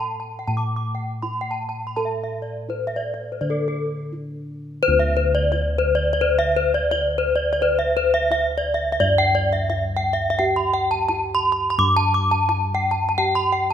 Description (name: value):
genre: Balinese gamelan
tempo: 86 BPM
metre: 4/4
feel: straight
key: D slendro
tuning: A4 = 440 Hz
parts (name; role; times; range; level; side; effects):
- gamelan-type bronze metallophone; arpeggios; 0.0-13.7 s; A4+25c to D6; -20 LUFS; left 1 dB; none
- gamelan-type bossed gongs; bass; 0.0-13.7 s; D2 to C5-45c; -25 LUFS; equal; none
room: wet recital hall reverb, RT60 1.6 s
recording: none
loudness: -19 LUFS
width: side -9 dB against mid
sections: 0.0-4.8 A section; 4.8-13.7 B section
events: break 3.8-4.8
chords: none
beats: 0.47 1.23 | 1.97 2.70 3.42 4.12 | 4.83 5.52 6.22 6.91 | 7.61 8.30 9.00 9.70 | 10.39 11.09 11.78 12.48 | 13.18